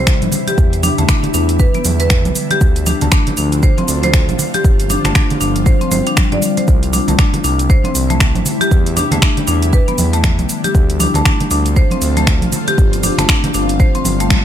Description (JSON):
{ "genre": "afro house", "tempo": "118 BPM", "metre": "4/4", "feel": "swing 60% on 16ths", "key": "D minor", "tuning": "A4 = 440 Hz", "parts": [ { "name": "ethereal airy pad", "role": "sustained chords", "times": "0.0-14.4 s", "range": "C3 to F4", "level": "-21 LUFS", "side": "left 2 dB", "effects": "ensemble chorus, built-in reverb, phaser, sidechain pumping" }, { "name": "marimba with medium hard mallets", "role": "arpeggios", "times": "0.0-14.3 s", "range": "A3 to D5", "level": "-19 LUFS", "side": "left 2 dB", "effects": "sidechain pumping, ping-pong delay" }, { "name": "smooth synth bass", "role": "bass", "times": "0.0-14.4 s", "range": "G1 to G2", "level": "-18 LUFS", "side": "equal", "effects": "tube saturation, sidechain pumping" }, { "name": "afro-pop drum kit", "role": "drums", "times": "0.1-14.4 s", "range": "finger snaps, hi-hat, shaker, toms", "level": "-19 LUFS", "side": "right 1 dB", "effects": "studio ambience" }, { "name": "electronic kick drum", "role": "drums", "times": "0.1-14.4 s", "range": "none", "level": "-13 LUFS", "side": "equal", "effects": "studio ambience" }, { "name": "congas", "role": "percussion", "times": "0.1-14.4 s", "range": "none", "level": "-22 LUFS", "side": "right 2 dB", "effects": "none" } ], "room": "digital ambience", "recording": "none", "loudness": "-11 LUFS", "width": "side -10 dB against mid", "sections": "0.0-14.4 A section", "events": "none", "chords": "0.0 C; 0.6 Em7; 2.6 Dm7; 4.6 G7sus4; 6.7 C; 8.7 Em7; 10.7 Dm7; 12.8 G7sus4" }